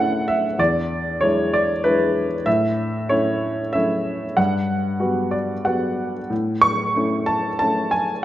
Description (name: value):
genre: classical, lyrical solo piano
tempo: 94 BPM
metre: 3/4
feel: rubato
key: A major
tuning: A4 = 440 Hz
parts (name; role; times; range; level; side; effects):
- warm baby grand piano; solo; 0.0-8.2 s; E2 to C#6; -18 LUFS; equal; none
room: moderate concert hall reverb, RT60 1.9 s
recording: none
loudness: -18 LUFS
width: side -13 dB against mid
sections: 0.0-8.2 A section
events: none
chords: 0.0 A; 0.6 E7; 2.5 A; 4.4 Gmaj7; 6.3 A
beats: | 0.59 1.23 1.84 | 2.47 3.10 3.73 | 4.37 5.00 5.65 | 6.31 6.97 7.61